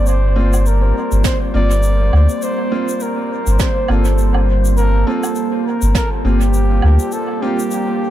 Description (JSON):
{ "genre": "ambient dub", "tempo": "102 BPM", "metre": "4/4", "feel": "swing 57% on 16ths", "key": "unclear", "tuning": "A4 = 440 Hz", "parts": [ { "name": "trumpet with bucket mute", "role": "melody", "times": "0.0-8.1 s", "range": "G4 to D5", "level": "-22 LUFS", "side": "equal", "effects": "dub echo" }, { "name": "deep dark ambient pad", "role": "sustained chords", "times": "0.0-8.1 s", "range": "G3 to D5", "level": "-22 LUFS", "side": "right 1 dB", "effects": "chorus, built-in reverb" }, { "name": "soft dub sub bass", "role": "bass", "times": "0.0-7.0 s", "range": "G1 to D2", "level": "-13 LUFS", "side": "equal", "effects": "none" }, { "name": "wind-like tuned noise texture", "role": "texture", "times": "0.0-8.1 s", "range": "C4 to C5", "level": "-28 LUFS", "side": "left 2 dB", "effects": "built-in reverb" }, { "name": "shaker, woodblock and snare drum", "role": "drums", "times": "0.1-7.8 s", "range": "none", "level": "-27 LUFS", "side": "right 3 dB", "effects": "dub echo" }, { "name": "clear upright piano", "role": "stabs", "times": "0.4-7.6 s", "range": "Bb3 to F4", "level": "-25 LUFS", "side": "right 1 dB", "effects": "dub echo" }, { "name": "electronic kick drum", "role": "drums", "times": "1.2-6.1 s", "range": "none", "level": "-19 LUFS", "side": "equal", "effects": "overdrive" } ], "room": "small room ambience", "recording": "none", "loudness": "-13 LUFS", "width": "side -12 dB against mid", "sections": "0.0-8.1 A section", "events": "break 7.1-8.1", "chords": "0.1 Bbsus2/G" }